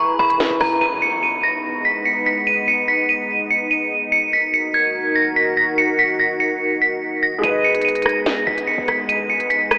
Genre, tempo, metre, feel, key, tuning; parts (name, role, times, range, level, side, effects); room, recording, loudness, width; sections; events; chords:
hip hop, drill; 145 BPM; 4/4; half-time; G# minor; A4 = 440 Hz
metallic FM bell; melody; 0.0-9.8 s; A#5 to D#7; -16 LUFS; equal; chorus, tape echo
felt-muted upright piano; accompaniment; 0.0-0.8, 7.4-9.8 s; E3 to D#5; -25 LUFS; equal
dark analog pad; sustained chords; 0.0-9.8 s; D#3 to B4; -25 LUFS; equal; chorus
short 808-style bass; bass; 0.2-0.8, 7.4-9.8 s; E1 to G#2; -34 LUFS; equal
drill drum kit; drums; 0.3-0.7, 7.4-9.8 s; hi-hat, rim click, snare drum; -25 LUFS; equal
impact; sound effects; 0.8-2.5 s; -38 LUFS; equal
wet cathedral reverb, RT60 6.5 s; dreamy mix soaked in reverb, telephone sound; -15 LUFS; side -24 dB against mid
0.8-9.8 A section
impact 0.8-2.5
0.0 E; 0.8 G#m; 4.1 D#m; 7.4 G#m